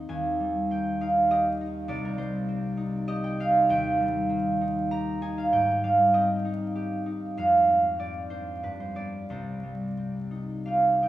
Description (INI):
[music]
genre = classical, solo harp piece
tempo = 78-103 BPM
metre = 3/4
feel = rubato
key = C minor from 3.7 s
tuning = A4 = 440 Hz
[part]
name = concert harp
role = solo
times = 0.0-11.1 s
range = C2 to Bb5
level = -24 LUFS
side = right 1 dB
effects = none
[sound]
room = wet cathedral reverb, RT60 5.4 s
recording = vinyl crackle, studio ambience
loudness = -24 LUFS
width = side -14 dB against mid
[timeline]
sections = 0.0-11.1 A section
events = none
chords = 0.1 Eb; 1.9 Cm; 3.7 Eb; 5.5 Abmaj7; 7.4 Dm7b5/F; 8.6 G; 9.3 Cm